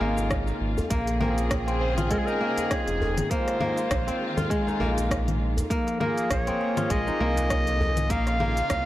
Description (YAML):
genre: organic downtempo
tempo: 100 BPM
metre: 4/4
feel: swing 56% on 16ths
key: Bb minor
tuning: A4 = 438 Hz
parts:
  - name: bright clarinet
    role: melody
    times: 0.0-8.9 s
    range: Ab4 to F5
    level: -30 LUFS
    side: equal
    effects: digital delay
  - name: rich symphonic string section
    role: sustained chords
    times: 0.0-8.9 s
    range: Db3 to Ab4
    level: -34 LUFS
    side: equal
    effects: sidechain pumping
  - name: kora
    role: arpeggios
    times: 0.0-8.9 s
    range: Ab3 to F4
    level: -28 LUFS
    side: left 1 dB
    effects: digital delay
  - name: round analog bass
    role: bass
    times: 0.0-8.9 s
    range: F1 to C2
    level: -28 LUFS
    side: equal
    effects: tube saturation
  - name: deep house drum kit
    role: drums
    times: 0.2-8.8 s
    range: congas, hi-hat, rim click, shaker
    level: -32 LUFS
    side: left 2 dB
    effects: none
  - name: djembe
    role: percussion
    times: 0.2-8.5 s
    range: none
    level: -35 LUFS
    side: left 1 dB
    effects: none
  - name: electronic kick drum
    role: drums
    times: 0.3-8.8 s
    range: none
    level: -31 LUFS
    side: equal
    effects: none
  - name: pedal harmonium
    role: accompaniment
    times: 1.2-8.6 s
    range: Bb3 to Ab4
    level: -34 LUFS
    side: right 1 dB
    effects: sidechain pumping, digital delay
room: light reverb, studio reverb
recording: blown-out, overdriven recording, overdrive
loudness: -23 LUFS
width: side -14 dB against mid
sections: 0.9-8.9 A section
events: none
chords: 0.0 Db6; 0.9 Bbm7; 3.3 Bb9sus4; 8.1 Db6/Bb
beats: 0.31 | 0.91 1.51 2.11 2.71 | 3.31 3.91 4.51 5.11 | 5.71 6.31 6.91 7.51 | 8.11 8.71